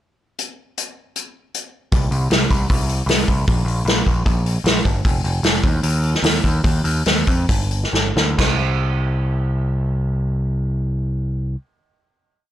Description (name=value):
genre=indie rock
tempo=130-155 BPM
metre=4/4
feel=straight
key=unclear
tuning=A4 = 440 Hz
part: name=unplugged drum kit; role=drums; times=0.4-8.5 s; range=crash cymbal, hi-hat, kick drum, snare drum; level=-18 LUFS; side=equal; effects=none
part: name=growling picked electric bass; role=bass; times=1.9-11.5 s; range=F1 to F2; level=-20 LUFS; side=equal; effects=overdrive
room=little or no reverb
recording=blown-out, overdriven recording, overdrive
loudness=-17 LUFS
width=side -12 dB against mid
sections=0.4-1.9 pickup bar; 1.9-8.4 interlude; 8.4-12.1 final note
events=slowing down 5.0-8.4; drum fill 7.9-8.4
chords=none